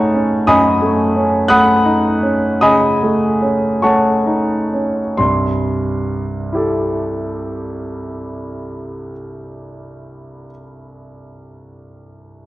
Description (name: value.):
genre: classical, impressionist solo piano.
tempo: 42-60 BPM.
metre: 4/4.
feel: rubato.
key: unclear.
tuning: A4 = 441 Hz.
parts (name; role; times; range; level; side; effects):
clear concert grand piano; solo; 0.0-12.5 s; C2 to F#6; -14 LUFS; equal; none.
room: moderate scoring stage reverb, RT60 1.7 s.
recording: worn, warbling old tape, cassette tape, warbly pitch drift.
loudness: -13 LUFS.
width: side -17 dB against mid.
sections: 0.0-5.2 A section; 5.2-10.6 B section.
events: slowing down 0.0-5.2.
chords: 0.0 F#m6; 5.2 C6.